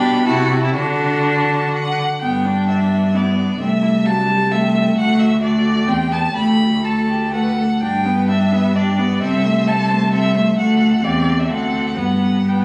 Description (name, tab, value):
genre	quick classical-period movement for string quartet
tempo	120-134 BPM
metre	3/4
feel	rubato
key	G major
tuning	A4 = 440 Hz
part	warm violin	melody	0.0-12.6 s	D5 to B5	-24 LUFS	equal	none
part	rich violin	second line	0.0-12.6 s	B3 to C5	-30 LUFS	equal	none
part	warm viola	accompaniment	0.0-12.6 s	F#3 to E4	-22 LUFS	equal	none
part	rich cello	bass	0.0-12.6 s	C2 to D3	-21 LUFS	equal	none
room	moderate scoring stage reverb, RT60 2.0 s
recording	recorded on a phone in the room, club reverb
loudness	-17 LUFS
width	mono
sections	0.0-2.2 A section; 2.2-12.6 B section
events	none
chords	0.3 Am/C; 0.7 D; 2.2 G; 3.6 Am/C; 5.0 D; 5.9 C/E; 6.3 Dsus4; 7.8 G; 9.2 Am/C; 10.6 D; 11.0 C/E; 11.5 D7; 12.0 G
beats	0.26 | 0.75 1.25 1.74 | 2.22 2.68 3.15 | 3.60 4.06 4.51 | 4.96 5.41 5.87 | 6.35 6.84 7.33 | 7.82 8.29 8.75 | 9.21 9.67 10.12 | 10.58 11.03 11.50 | 11.97 12.46